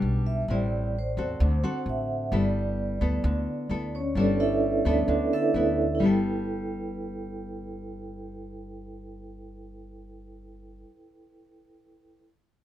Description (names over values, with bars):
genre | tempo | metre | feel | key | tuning
bossa nova | 130 BPM | 4/4 | straight | G major | A4 = 440 Hz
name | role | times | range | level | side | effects
nylon-string guitar | accompaniment | 0.0-10.9 s | A2 to A4 | -30 LUFS | left 3 dB | none
vibraphone with medium mallets | accompaniment | 0.0-12.2 s | C#4 to G5 | -29 LUFS | right 2 dB | none
upright bass | bass | 0.0-10.8 s | G1 to E2 | -29 LUFS | equal | none
room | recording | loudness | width
light reverb | minimal, uncompressed stereo recording | -24 LUFS | side -12 dB against mid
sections
0.0-6.0 A section; 6.0-9.7 B section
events
vibraphone solo 0.0-6.0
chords
0.5 Am7; 1.4 D7; 2.3 G69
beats
0.03 | 0.49 0.95 1.41 1.87 | 2.33 2.79 3.25 3.71 | 4.17 4.63 5.09 5.55 | 6.01 6.47 6.93 7.40 | 7.86 8.32 8.78 9.24